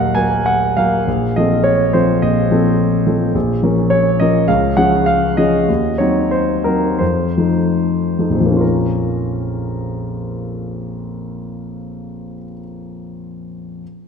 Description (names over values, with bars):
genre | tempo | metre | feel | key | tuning
classical, romantic character piece for solo piano | 67-110 BPM | 4/4 | rubato | Bb minor | A4 = 439 Hz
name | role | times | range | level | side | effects
warm grand piano | solo | 0.0-13.8 s | Bb1 to Ab5 | -15 LUFS | equal | none
room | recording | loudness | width
wet concert hall reverb, RT60 1.9 s | none | -13 LUFS | side -6 dB against mid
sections
0.0-8.6 A section; 8.6-11.6 B section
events
slowing down 2.2-8.6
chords
0.0 Ebm/Bb; 1.1 F7/Bb; 3.3 Bbm; 4.5 Db; 5.7 Cdim/Eb; 7.0 F7; 8.6 Bbm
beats
0.46 | 1.06 1.65 2.22 2.79 | 3.34 3.91 4.48 5.06 | 5.68 6.32 7.01 7.76 | 8.61 9.36 10.11 10.88